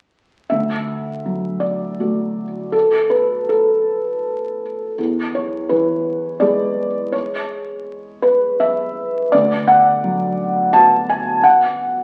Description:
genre	neoclassical minimalist piano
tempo	83 BPM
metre	3/4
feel	rubato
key	unclear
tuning	A4 = 440 Hz
part	felt-muted upright piano	solo	0.5-12.0 s	D2 to A5	-18 LUFS	equal	none
room	wet large studio reverb, RT60 1.1 s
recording	very old 78 rpm record, vinyl crackle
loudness	-18 LUFS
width	mono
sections	0.5-12.0 A section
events	none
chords	0.5 D; 5.0 E; 9.3 Bm/D

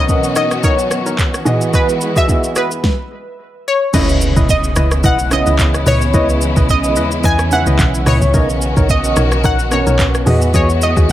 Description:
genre	amapiano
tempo	109 BPM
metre	4/4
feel	swing 55% on 16ths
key	unclear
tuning	A4 = 440 Hz
part	analog pluck	melody	0.0-11.0 s	B4 to G#5	-18 LUFS	left 1 dB	chorus, tape echo
part	warm baby grand piano	accompaniment	0.0-11.1 s	B2 to F#5	-21 LUFS	right 2 dB	none
part	warm studio string section	sustained chords	0.0-11.1 s	E3 to A#4	-22 LUFS	left 1 dB	none
part	percussive organ stab	stabs	0.0-11.1 s	D#4 to D#5	-23 LUFS	left 1 dB	chorus, tape echo
part	smooth R&B drum kit	drums	0.1-11.1 s	crash cymbal, handclaps, hi-hat, kick drum, rim click, shaker, snare drum, toms	-16 LUFS	equal	none
part	deep log drum bass	bass	3.9-11.1 s	A#1 to E2	-16 LUFS	equal	none
part	impact	sound effects	3.9-6.1 s	none	-23 LUFS	equal	none
room	light reverb, digital ambience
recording	none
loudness	-12 LUFS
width	side -13 dB against mid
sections	0.0-3.9 A section; 3.9-11.1 B section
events	stop 2.8-3.9; drop 3.9-11.1; impact 3.9-6.1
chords	0.0 Bmaj9; 1.5 Emaj9; 3.9 C#m9; 8.3 Bmaj9; 10.3 Emaj9

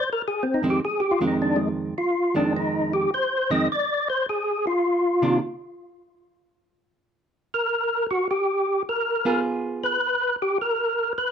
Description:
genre	jazz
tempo	104 BPM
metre	4/4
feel	swing 68% on 8ths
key	unclear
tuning	A4 = 440 Hz
part	percussive tonewheel organ	melody	0.0-11.3 s	Ab3 to Eb5	-22 LUFS	left 1 dB	slow rotary speaker, overdrive, chorus vibrato, plate reverb
part	hollow-body jazz guitar	accompaniment	0.6-5.4, 9.3-10.0 s	F2 to Ab4	-24 LUFS	right 3 dB	none
room	moderate studio reverb, RT60 0.5 s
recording	dark, warm production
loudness	-21 LUFS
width	side -8 dB against mid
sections	0.0-11.3 A section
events	tonewheel organ solo 0.0-11.3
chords	0.2 Fm7; 4.8 Cm9; 9.4 Fdim

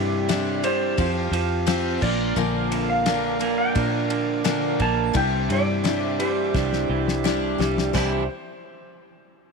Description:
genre	folk rock and heartland rock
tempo	86 BPM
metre	4/4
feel	straight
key	C major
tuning	A4 = 440 Hz
part	clean lap steel guitar	melody	0.0-8.3 s	C5 to A5	-28 LUFS	right 2 dB	tape echo
part	picked steel-string acoustic guitar	accompaniment	0.0-8.2 s	Bb2 to Bb4	-26 LUFS	left 12 dB	none
part	accordion	sustained chords	0.0-8.3 s	E4 to D6	-33 LUFS	right 13 dB	light tremolo tuning
part	electric guitar through a small old amp	riff	0.0-8.2 s	Bb2 to E4	-27 LUFS	right 12 dB	none
part	fingered electric bass	bass	0.0-8.3 s	Bb1 to Bb2	-27 LUFS	equal	none
part	damped 70s drum kit	drums	0.3-8.1 s	crash cymbal, kick drum, ride cymbal, snare drum, splash cymbal	-29 LUFS	left 4 dB	none
room	light reverb, small room reverb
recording	1960s-style stereo with parts hard left and right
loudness	-20 LUFS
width	side -4 dB against mid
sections	0.0-7.9 A section; 7.9-9.5 B section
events	drum fill 6.5-7.9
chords	0.0 Cadd9; 1.0 Fsus2; 2.0 Bb; 5.1 Cadd9

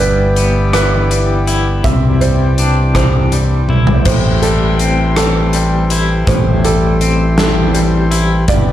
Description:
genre	post-rock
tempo	54 BPM (dotted quarters)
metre	6/8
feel	straight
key	A minor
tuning	A4 = 441 Hz
part	hand-pumped harmonium	sustained chords	0.0-8.7 s	E3 to D5	-21 LUFS	left 2 dB	none
part	clean electric guitar	arpeggios	0.0-8.7 s	G2 to E4	-19 LUFS	left 3 dB	tremolo, slapback echo
part	felt-muted upright piano	arpeggios	0.0-8.7 s	A4 to E5	-20 LUFS	right 4 dB	slapback echo
part	growling fingered electric bass	bass	0.0-8.7 s	G1 to C2	-14 LUFS	equal	overdrive
part	big rock drum kit	drums	0.0-8.7 s	crash cymbal, hi-hat, kick drum, rim click, snare drum, toms	-17 LUFS	equal	none
room	little or no reverb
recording	dark, warm production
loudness	-10 LUFS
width	side -12 dB against mid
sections	0.0-8.7 A section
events	drum fill 3.7-4.1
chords	0.0 G6; 1.8 Cadd9; 4.1 Am7

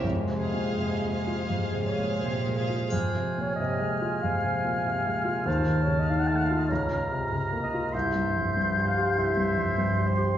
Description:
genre	classical, romantic movement for piano and orchestra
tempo	80-101 BPM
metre	4/4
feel	rubato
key	F minor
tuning	A4 = 441 Hz
part	warm concert grand piano	melody	0.0-10.4 s	C2 to G4	-27 LUFS	equal	none
part	rich studio violin section	second line	0.0-2.9 s	C5 to F5	-36 LUFS	left 1 dB	none
part	rich studio viola section	accompaniment	0.0-2.9 s	Ab4	-38 LUFS	right 2 dB	none
part	mellow French horn section	sustained chords	0.0-2.2 s	Ab3	-32 LUFS	left 3 dB	none
part	rich studio cello section	bass	0.0-2.9 s	F2 to Bb2	-34 LUFS	right 2 dB	none
part	timpani	percussion	0.0-1.1 s	F2	-38 LUFS	equal	none
part	mellow clarinet	second line	1.9-10.4 s	C5 to A5	-32 LUFS	left 1 dB	none
part	clear oboe	second line	2.9-10.4 s	Ab5 to C6	-34 LUFS	right 2 dB	none
part	silver concert flute	second line	2.9-10.1 s	F6 to G6	-32 LUFS	left 1 dB	none
part	triangle	percussion	2.9-4.2 s	none	-47 LUFS	left 4 dB	none
room	wet recital hall reverb, RT60 1.4 s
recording	recorded in a church or concert hall, nothing above 7.8 kHz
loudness	-24 LUFS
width	side -10 dB against mid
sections	0.0-2.9 A section; 2.9-10.4 A section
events	none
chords	0.0 Fm; 5.5 F7/Eb; 6.7 Bbm/Db; 7.9 C

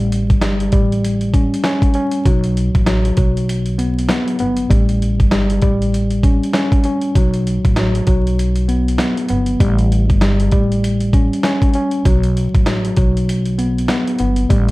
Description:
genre	hip hop, boom-bap hip-hop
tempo	98 BPM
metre	4/4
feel	swing 61% on 16ths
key	unclear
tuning	A4 = 441 Hz
part	tine electric piano	accompaniment	0.0-14.7 s	F#3 to C#4	-18 LUFS	equal	medium stereo tremolo, high-pass filter, low-pass filter
part	upright bass	bass	0.0-14.7 s	G1 to B1	-18 LUFS	equal	none
part	dusty soul sampler-style drum kit	drums	0.1-14.7 s	hi-hat, kick drum, snare drum	-16 LUFS	equal	none
room	little or no reverb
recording	dark, warm production, vinyl crackle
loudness	-13 LUFS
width	side -20 dB against mid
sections	0.0-14.7 A section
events	none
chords	0.0 A7; 2.3 B5; 4.7 A7; 7.2 B5; 9.6 A7; 12.1 B5

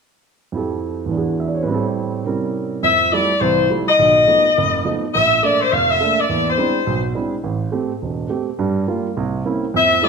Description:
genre	jazz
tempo	209 BPM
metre	4/4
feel	swing 61% on 8ths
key	F major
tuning	A4 = 435 Hz
part	warm grand piano	accompaniment	0.5-10.1 s	E1 to E5	-20 LUFS	right 4 dB	none
part	bright saxophone section	melody	2.8-7.0, 9.8-10.1 s	C5 to F5	-14 LUFS	left 3 dB	none
room	wet large studio reverb, RT60 1.2 s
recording	none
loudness	-16 LUFS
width	side -5 dB against mid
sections	0.5-2.8 A section; 2.8-10.1 B section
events	none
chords	0.5 Fmaj9; 1.1 E7; 1.7 Am7; 2.3 C7b9; 2.8 Fmaj9; 4.0 B7#11; 5.1 Bbmaj7; 6.3 E7b13; 7.4 Am7; 8.6 Gm7; 9.2 C7b9

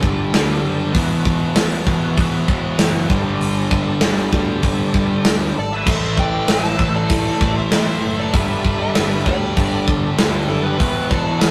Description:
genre	hard rock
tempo	97 BPM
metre	4/4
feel	straight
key	unclear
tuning	A4 = 440 Hz
part	overdriven tonewheel organ	sustained chords	0.0-11.5 s	E3 to F#5	-31 LUFS	equal	slow rotary speaker, chorus vibrato
part	scooped high-gain guitar	riff	0.0-11.5 s	E2 to A3	-25 LUFS	equal	distortion
part	sludgy distorted guitar	riff	0.0-11.5 s	E2 to A3	-25 LUFS	equal	overdrive
part	picked electric bass	bass	0.0-11.5 s	E1 to A2	-28 LUFS	equal	none
part	tight metal drum kit	drums	0.0-11.5 s	crash cymbal, hi-hat, kick drum, snare drum	-21 LUFS	equal	none
part	dark smooth lead guitar	melody	5.6-11.5 s	A4 to A5	-28 LUFS	equal	overdrive
part	octave-fuzz lead guitar	second line	5.6-11.5 s	E4 to E5	-30 LUFS	equal	distortion
room	moderate stone room reverb, RT60 1.1 s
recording	rough rehearsal-room recording, tube saturation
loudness	-18 LUFS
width	mono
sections	0.0-11.5 A section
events	none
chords	0.0 G5; 0.9 E5; 3.1 G5; 5.9 Am; 8.3 G5; 10.8 E5

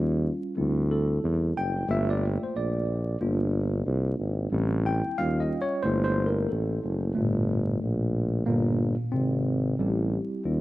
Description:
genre	hip hop, jazz-hop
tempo	91 BPM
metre	4/4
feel	swing 60% on 16ths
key	G dorian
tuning	A4 = 440 Hz
part	tine electric piano	accompaniment	0.0-10.6 s	A2 to G5	-28 LUFS	equal	medium stereo tremolo
part	warm tuba	bass	0.0-10.6 s	F#1 to E2	-26 LUFS	equal	none
room	light reverb, studio reverb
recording	vinyl crackle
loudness	-24 LUFS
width	side -17 dB against mid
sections	0.0-7.2 A section; 7.2-10.6 B section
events	tine electric piano solo 0.0-7.2, 7.2-10.6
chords	0.0 Eb9; 0.6 D9sus4; 1.9 Gm9; 3.2 C9sus4/G; 4.5 Am7; 5.2 Eb9; 5.8 Gm69; 7.2 Gm9; 8.5 C9sus4/G; 9.8 Am7

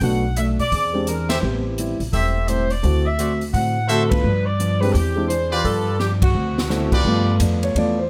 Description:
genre	jazz, big band swing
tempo	171 BPM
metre	4/4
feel	swing 64% on 8ths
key	unclear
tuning	A4 = 440 Hz
part	clear saxophone section	melody	0.0-6.9 s	F#4 to F#5	-26 LUFS	equal	none
part	picked plugged-in steel-string acoustic guitar	accompaniment	0.0-8.0 s	G2 to G#4	-30 LUFS	equal	none
part	warm concert grand piano	accompaniment	0.0-8.1 s	G#3 to D5	-25 LUFS	equal	none
part	upright bass	bass	0.0-8.1 s	E1 to B2	-24 LUFS	equal	none
part	swinging big-band drum kit	drums	0.0-7.9 s	crash cymbal, hi-hat, kick drum, ride cymbal, snare drum	-28 LUFS	equal	none
part	clear trumpet section	stabs	1.3-7.4 s	F4 to E5	-27 LUFS	equal	none
room	light reverb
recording	close, detailed microphones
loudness	-20 LUFS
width	mono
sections	0.0-7.0 A section; 7.0-8.1 B section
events	band accent 1.2, 4.1, 6.2; drum fill 6.0-6.7; grand piano solo 7.0-8.1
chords	0.0 Bm7; 0.7 E7alt; 1.4 Am7; 2.8 D7; 4.2 G7; 4.9 E7alt; 5.6 G7; 6.3 D7; 7.0 G7

